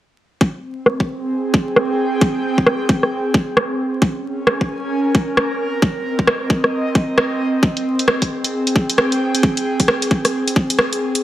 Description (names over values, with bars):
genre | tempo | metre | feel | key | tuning
UK garage, two-step garage | 133 BPM | 4/4 | swing 62% on 16ths | Ab major | A4 = 440 Hz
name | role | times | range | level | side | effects
electronic kick drum | drums | 0.4-10.7 s | none | -15 LUFS | equal | overdrive, high-pass filter on kick, studio reverb
airy breathy pad | texture | 0.4-11.2 s | C4 to Ab5 | -20 LUFS | right 1 dB | chorus, sidechain pumping
garage drum kit | drums | 0.9-11.2 s | hi-hat, rim click | -17 LUFS | equal | low-pass filter on snare, studio reverb, low-pass filter on hats
room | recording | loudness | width
moderate lush hall reverb, RT60 2.1 s | vinyl crackle | -15 LUFS | side -13 dB against mid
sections
0.4-11.2 A section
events
filter sweep on drum 0.4-11.2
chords
0.4 Abmaj7; 4.0 Bbm7; 5.6 Cm7; 7.6 Abmaj7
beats
| 0.41 0.86 1.31 1.76 | 2.21 2.67 3.12 3.57 | 4.02 4.47 4.92 5.37 | 5.82 6.28 6.73 7.18 | 7.63 8.08 8.53 8.98 | 9.43 9.88 10.34 10.79